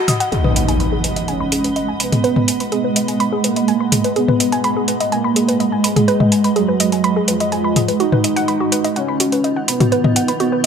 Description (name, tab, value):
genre	melodic techno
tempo	125 BPM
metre	4/4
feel	straight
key	G# dorian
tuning	A4 = 442 Hz
part	woody wave-folded pluck	arpeggios	0.0-10.7 s	F#4 to D#6	-21 LUFS	equal	chorus, digital delay
part	granular cloud pad	texture	0.0-10.7 s	G#3 to B5	-21 LUFS	right 3 dB	built-in reverb
part	deep house drum kit	drums	0.1-10.7 s	hi-hat, toms	-19 LUFS	left 1 dB	none
part	analog synth brass	melody	0.3-10.7 s	E#3 to D#4	-19 LUFS	right 1 dB	chorus, dub echo
part	impact	sound effects	0.3-2.2 s	none	-20 LUFS	equal	none
room	moderate lush hall reverb, RT60 2.0 s, digital ambience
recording	none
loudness	-14 LUFS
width	side -7 dB against mid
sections	0.3-10.7 A section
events	impact 0.3-2.2; filter sweep on synth pluck 0.3-10.7; filter sweep on analog polysynth 0.3-10.7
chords	0.3 G#m; 8.0 B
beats	| 0.32 0.80 1.28 1.76 | 2.24 2.72 3.20 3.68 | 4.16 4.64 5.12 5.60 | 6.08 6.56 7.04 7.52 | 8.00 8.48 8.96 9.44 | 9.92 10.40